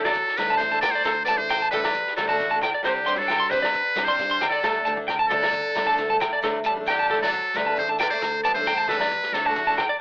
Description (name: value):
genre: highlife guitar band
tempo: 134 BPM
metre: 4/4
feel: straight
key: D mixolydian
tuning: A4 = 440 Hz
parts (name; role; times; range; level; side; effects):
- trumpet with metal mute; melody; 0.0-9.8 s; F#4 to D5; -24 LUFS; equal; none
- oud; second line; 0.0-9.8 s; D3 to B3; -32 LUFS; left 1 dB; none
- picked steel-string acoustic guitar; accompaniment; 0.0-9.8 s; G3 to D4; -31 LUFS; equal; none
- electric guitar at the edge of break-up; arpeggios; 0.0-10.0 s; A4 to C6; -24 LUFS; right 1 dB; tremolo
- fingered electric bass; bass; 0.0-9.8 s; G1 to G2; -41 LUFS; equal; none
- vintage drum kit; drums; 0.0-9.9 s; kick drum, snare drum; -34 LUFS; equal; cassette tape
- agogo bells; percussion; 0.1-9.9 s; none; -30 LUFS; left 1 dB; none
- congas; percussion; 0.1-9.9 s; none; -40 LUFS; equal; none
- shekere; percussion; 0.1-9.7 s; none; -39 LUFS; equal; none
room: light reverb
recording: home recording on cassette, telephone sound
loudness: -20 LUFS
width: side -27 dB against mid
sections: 0.0-10.0 A section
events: none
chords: 0.0 Dsus4; 2.9 Csus2; 4.6 Gsus2; 6.4 Dsus4